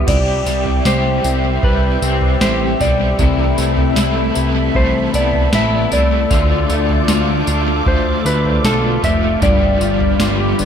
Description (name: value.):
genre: dream pop.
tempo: 77 BPM.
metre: 4/4.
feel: straight.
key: C major.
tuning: A4 = 440 Hz.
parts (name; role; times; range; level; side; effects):
clean lap steel guitar; melody; 0.0-10.7 s; A4 to E5; -21 LUFS; right 1 dB; tape echo.
phased analog pad; sustained chords; 0.0-10.7 s; F4 to D6; -24 LUFS; right 1 dB; phaser, chorus.
electric guitar at the edge of break-up; arpeggios; 0.0-10.7 s; G2 to G4; -20 LUFS; left 6 dB; ensemble chorus, tape echo.
fat analog bass; bass; 0.0-10.7 s; F1 to D2; -19 LUFS; equal; none.
overdriven semi-hollow guitar; accompaniment; 0.1-10.7 s; G2 to B4; -24 LUFS; right 3 dB; tremolo, analog chorus, tape echo.
soft vintage rhythm box; drums; 0.1-10.7 s; crash cymbal, kick drum, snare drum, tambourine, toms; -19 LUFS; right 1 dB; overdrive, tape echo.
room: light reverb.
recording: echo-heavy mix.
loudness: -13 LUFS.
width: side -8 dB against mid.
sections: 0.1-10.7 A section.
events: none.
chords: 0.1 C; 3.2 Amadd9/C; 6.3 Dm; 9.4 G7.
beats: | 0.07 0.85 1.63 2.41 | 3.19 3.97 4.75 5.53 | 6.31 7.09 7.87 8.65 | 9.43 10.21.